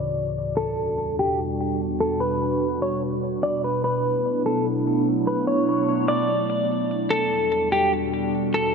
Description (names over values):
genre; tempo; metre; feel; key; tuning
hip hop; 147 BPM; 4/4; half-time; E dorian; A4 = 440 Hz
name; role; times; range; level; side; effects
clean electric guitar; melody; 0.0-8.7 s; G4 to D5; -23 LUFS; left 1 dB; ping-pong delay
warbly tape-like pad; sustained chords; 0.0-8.7 s; D2 to F#4; -24 LUFS; right 1 dB; chorus, built-in reverb
room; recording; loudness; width
moderate lush hall reverb, RT60 2.7 s; low-pass filter; -21 LUFS; side -5 dB against mid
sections
0.0-7.1 A section; 7.1-8.7 B section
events
filter sweep 0.0-7.1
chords
0.0 Dmaj7; 0.6 Em9; 3.8 Bm11; 7.1 Em9